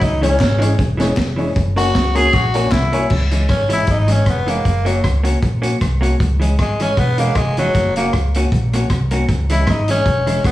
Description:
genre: ska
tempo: 155 BPM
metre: 4/4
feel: swing 54% on 8ths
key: C# dorian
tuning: A4 = 440 Hz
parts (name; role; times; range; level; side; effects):
- raspy tenor saxophone; melody; 0.0-10.5 s; F#3 to G#4; -19 LUFS; left 1 dB; slapback echo
- upright bass; bass; 0.0-10.5 s; E1 to C#2; -18 LUFS; equal; none
- vintage drum kit; drums; 0.0-10.5 s; crash cymbal, hi-hat, kick drum, rim click, snare drum; -20 LUFS; equal; none
- vintage hollow-body jazz guitar; accompaniment; 0.2-10.4 s; E3 to F#4; -22 LUFS; right 1 dB; none
- dark upright piano; stabs; 0.2-3.1 s; C#4 to C#5; -22 LUFS; left 2 dB; slapback echo
- group handclap; percussion; 0.4-2.8 s; none; -36 LUFS; left 4 dB; none
room: light reverb, small room ambience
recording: vinyl crackle, studio reverb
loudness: -14 LUFS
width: side -15 dB against mid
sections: 0.0-3.1 A section; 3.1-10.5 A section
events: tenor saxophone solo 0.0-3.1, 3.1-10.5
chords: 0.0 C#m; 1.6 F#; 3.1 C#m; 4.7 F#; 6.2 C#m; 7.7 F#; 9.3 C#m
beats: | 0.02 0.41 0.79 1.18 | 1.57 1.95 2.34 2.73 | 3.11 3.50 3.89 4.27 | 4.66 5.04 5.43 5.82 | 6.20 6.59 6.98 7.36 | 7.75 8.13 8.52 8.90 | 9.29 9.68 10.06 10.45

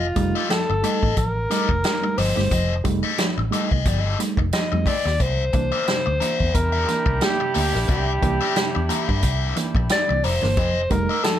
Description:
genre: funk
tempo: 89 BPM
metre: 4/4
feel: swing 56% on 16ths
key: unclear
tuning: A4 = 440 Hz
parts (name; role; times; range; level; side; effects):
- breathy alto saxophone; melody; 0.0-11.4 s; F4 to Eb5; -24 LUFS; equal; none
- biting overdriven guitar; accompaniment; 0.0-11.3 s; G4 to E5; -27 LUFS; left 6 dB; wah
- vintage muted fingered electric bass; bass; 0.0-11.1 s; F1 to G2; -24 LUFS; equal; none
- reed electric piano; stabs; 0.2-11.4 s; C3 to Eb4; -28 LUFS; right 3 dB; spring reverb, tape echo
- swinging big-band drum kit; drums; 0.2-11.4 s; hi-hat, kick drum, snare drum; -24 LUFS; equal; none
- clear horn section; second line; 6.5-10.2 s; G3 to G4; -30 LUFS; right 1 dB; none
room: light reverb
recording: none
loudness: -19 LUFS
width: side -11 dB against mid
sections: 0.0-11.4 A section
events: none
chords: 0.0 F9; 5.2 C9; 10.6 F9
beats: 0.50 1.17 1.84 | 2.52 3.19 3.86 4.53 | 5.20 5.88 6.55 7.22 | 7.89 8.56 9.23 9.90 | 10.57 11.24

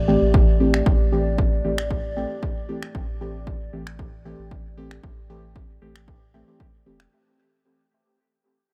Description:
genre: dub techno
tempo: 115 BPM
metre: 4/4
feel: straight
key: A minor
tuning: A4 = 441 Hz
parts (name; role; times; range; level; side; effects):
- dark analog pad; sustained chords; 0.0-7.1 s; A3 to D5; -32 LUFS; equal; lush chorus, sidechain pumping
- warm sub bass; bass; 0.0-7.1 s; E1 to A1; -29 LUFS; equal; sidechain pumping
- deep mellow chord stab; stabs; 0.1-7.0 s; E3 to G4; -28 LUFS; equal; chorus, phaser, sidechain pumping, dub echo
- electronic kick drum; drums; 0.3-6.7 s; none; -24 LUFS; equal; none
- electronic finger snaps; drums; 0.7-7.1 s; none; -35 LUFS; equal; dub echo
room: little or no reverb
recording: none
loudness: -22 LUFS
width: mono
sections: 0.0-7.1 A section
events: fade-out 0.0-7.1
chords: 0.0 Am7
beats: 0.34 | 0.86 1.38 1.90 2.43 | 2.95 3.47 3.99 4.51 | 5.04 5.56 6.08 6.60

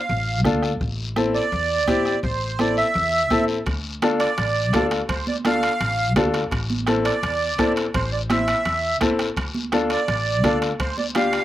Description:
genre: latin, cumbia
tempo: 168 BPM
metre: 4/4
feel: straight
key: D minor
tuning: A4 = 440 Hz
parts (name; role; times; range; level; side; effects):
- accordion; melody; 0.0-11.4 s; C5 to F5; -22 LUFS; right 2 dB; light tremolo tuning, slapback echo
- upright bass; bass; 0.1-11.4 s; A1 to E2; -27 LUFS; equal; none
- guiro; percussion; 0.1-11.4 s; none; -34 LUFS; left 5 dB; none
- bright upright piano; accompaniment; 0.4-11.4 s; C4 to C5; -23 LUFS; left 3 dB; slapback echo
- bombo; percussion; 0.4-11.3 s; none; -30 LUFS; right 1 dB; none
- congas; percussion; 0.5-11.3 s; none; -26 LUFS; right 3 dB; slapback echo
- timbales; percussion; 3.7-11.4 s; none; -30 LUFS; right 3 dB; slapback echo
room: little or no reverb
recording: recorded outdoors, with no room sound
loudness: -19 LUFS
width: side -13 dB against mid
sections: 0.0-11.4 A section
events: none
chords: 0.0 Dm; 0.8 Am; 3.7 Dm; 6.5 Am; 9.4 Dm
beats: 0.10 0.45 | 0.81 1.17 1.52 1.88 | 2.24 2.59 2.95 3.31 | 3.66 4.02 4.38 4.73 | 5.09 5.45 5.80 6.16 | 6.52 6.88 7.23 7.59 | 7.95 8.30 8.66 9.02 | 9.37 9.73 10.09 10.44 | 10.80 11.15

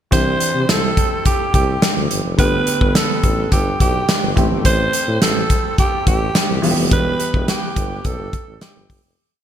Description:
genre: 1980s-style pop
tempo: 106 BPM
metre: 4/4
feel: straight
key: C major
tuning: A4 = 440 Hz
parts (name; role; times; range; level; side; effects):
- raspy alto saxophone; melody; 0.1-9.0 s; G4 to C5; -20 LUFS; right 2 dB; ping-pong delay
- clear concert grand piano; accompaniment; 0.1-9.2 s; D3 to G4; -23 LUFS; equal; none
- warm tuba; bass; 0.1-9.1 s; E1 to C3; -23 LUFS; equal; tube saturation
- modern studio drum kit; drums; 0.1-9.0 s; hi-hat, kick drum, snare drum; -17 LUFS; equal; gated reverb
room: moderate lush hall reverb, RT60 2.8 s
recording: bright 1980s-style digital production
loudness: -14 LUFS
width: side -10 dB against mid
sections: 0.1-9.2 verse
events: fade-out 6.9-9.2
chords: 0.1 Cadd9; 2.4 Gadd9; 4.4 Am7; 6.6 Em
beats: | 0.12 0.69 1.26 1.82 | 2.39 2.95 3.52 4.09 | 4.65 5.22 5.78 6.35 | 6.92 7.48 8.05 8.61

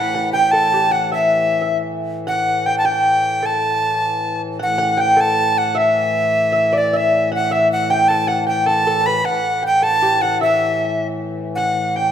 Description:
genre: medieval dance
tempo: 103 BPM (dotted quarters)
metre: 6/8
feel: straight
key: unclear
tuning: A4 = 438 Hz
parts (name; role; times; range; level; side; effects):
- bright reedy tenor recorder; melody; 0.0-12.1 s; D5 to B5; -17 LUFS; equal; none
- lute; second line; 0.0-12.1 s; G4 to G5; -20 LUFS; equal; none
- pedal harmonium; drone; 0.0-12.1 s; A2 to E3; -25 LUFS; left 3 dB; none
room: wet recital hall reverb, RT60 1.8 s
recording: none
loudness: -15 LUFS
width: side -9 dB against mid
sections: 0.0-4.6 A section; 4.6-12.1 A section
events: none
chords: none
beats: 0.53 | 1.11 1.69 | 2.27 2.86 | 3.44 4.02 | 4.60 5.18 | 5.76 6.34 | 6.92 7.50 | 8.09 8.67 | 9.25 9.83 | 10.41 10.99 | 11.57

